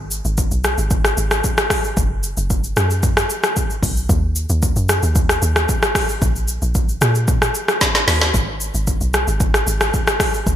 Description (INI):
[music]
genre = amapiano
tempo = 113 BPM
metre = 4/4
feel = straight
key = unclear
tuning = A4 = 439 Hz
[part]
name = deep log drum bass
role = bass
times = 0.0-10.6 s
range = F#1 to A#2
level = -20 LUFS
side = equal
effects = none
[part]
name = afro-pop drum kit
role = drums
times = 0.1-10.6 s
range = hi-hat, kick drum, rim click, shaker, snare drum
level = -17 LUFS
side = equal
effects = gated reverb
[sound]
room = light reverb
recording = bright 1980s-style digital production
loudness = -15 LUFS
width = side -11 dB against mid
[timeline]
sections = 0.0-8.3 A section; 8.3-10.6 A section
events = drop 0.0-8.3, 8.3-10.6; drum fill 7.8-8.3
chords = none